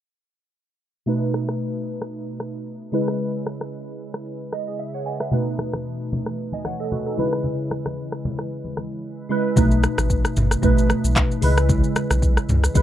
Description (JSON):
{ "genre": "afrobeats", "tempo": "113 BPM", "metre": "4/4", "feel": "swing 55% on 16ths", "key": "B mixolydian", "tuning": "A4 = 439 Hz", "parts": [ { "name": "glassy digital keys", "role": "accompaniment", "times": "1.1-12.8 s", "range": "B2 to G#5", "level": "-23 LUFS", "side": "right 1 dB", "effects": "chorus" }, { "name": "afro-pop drum kit", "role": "drums", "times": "1.1-12.8 s", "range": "handclaps, hi-hat, kick drum, rim click, shaker, toms", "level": "-22 LUFS", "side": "equal", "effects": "none" }, { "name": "congas", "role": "percussion", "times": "5.3-12.6 s", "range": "none", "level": "-31 LUFS", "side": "left 1 dB", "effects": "none" }, { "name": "warm sub bass", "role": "bass", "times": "9.6-12.8 s", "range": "G#1 to C#2", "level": "-20 LUFS", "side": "equal", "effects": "none" } ], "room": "light reverb", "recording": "low-pass filter", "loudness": "-20 LUFS", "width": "side -12 dB against mid", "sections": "1.1-9.6 A section; 9.6-12.8 B section", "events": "filter sweep 1.1-9.6; synth keys fill 4.3-5.3; silent gap 9.0-9.6", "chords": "1.1 B7; 2.9 C#m7; 5.3 B7; 7.2 C#m7; 9.6 B7; 11.4 C#m7" }